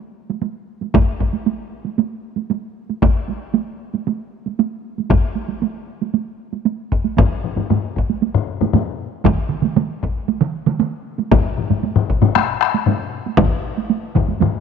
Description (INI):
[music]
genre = japanese traditional, taiko drum ensemble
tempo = 116 BPM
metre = 4/4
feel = straight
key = none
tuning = none
[part]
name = taiko ensemble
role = percussion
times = 0.3-14.5 s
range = none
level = -21 LUFS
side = right 11 dB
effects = none
[part]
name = taiko ensemble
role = percussion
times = 0.9-14.3 s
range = none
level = -17 LUFS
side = left 2 dB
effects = none
[part]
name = taiko ensemble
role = percussion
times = 7.2-14.5 s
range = none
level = -18 LUFS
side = left 8 dB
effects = none
[part]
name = taiko ensemble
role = percussion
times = 9.2-14.5 s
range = none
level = -20 LUFS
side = right 8 dB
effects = none
[sound]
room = light reverb, small room ambience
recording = 1960s-style stereo with parts hard left and right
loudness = -17 LUFS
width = side -7 dB against mid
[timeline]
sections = 0.0-7.2 A section; 7.2-14.6 B section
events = none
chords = none